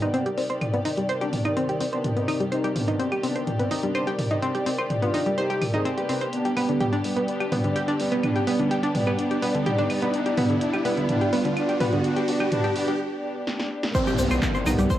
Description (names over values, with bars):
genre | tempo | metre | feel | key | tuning
melodic techno | 126 BPM | 4/4 | straight | C harmonic minor | A4 = 440 Hz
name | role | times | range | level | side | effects
analog synth brass | melody | 0.0-14.9 s | Eb3 to B4 | -28 LUFS | equal | chorus, cassette tape, sidechain pumping, analog delay
warm studio string section | sustained chords | 0.0-15.0 s | C3 to D5 | -29 LUFS | left 1 dB | sidechain pumping, cassette tape
analog pluck | arpeggios | 0.0-15.0 s | D3 to C6 | -26 LUFS | equal | chorus, sidechain pumping, cassette tape, analog delay
tight sequencer bass | bass | 0.0-14.9 s | F1 to G2 | -36 LUFS | equal | none
punchy analog drum machine | drums | 0.0-15.0 s | claves, crash cymbal, handclaps, hi-hat, snare drum, toms | -29 LUFS | equal | sidechain pumping on hats, cassette tape, sidechain pumping on perc, sidechain pumping on toms, sidechain pumping on cymbals
riser and downlifter | sound effects | 3.5-15.0 s | none | -33 LUFS | right 1 dB | none
electronic kick drum | drums | 13.9-15.0 s | none | -26 LUFS | equal | cassette tape
tube shaker | percussion | 13.9-15.0 s | none | -40 LUFS | right 1 dB | none
room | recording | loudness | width
wet studio reverb, RT60 0.6 s | home recording on cassette | -22 LUFS | side -12 dB against mid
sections
0.0-13.9 A section; 13.9-15.0 B section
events
build-up 0.0-13.9; riser 3.5-13.0; break 13.0-13.9; drum fill 13.5-13.9; drop 13.9-15.0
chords
0.0 Cmadd9; 6.3 G; 13.9 Cmadd9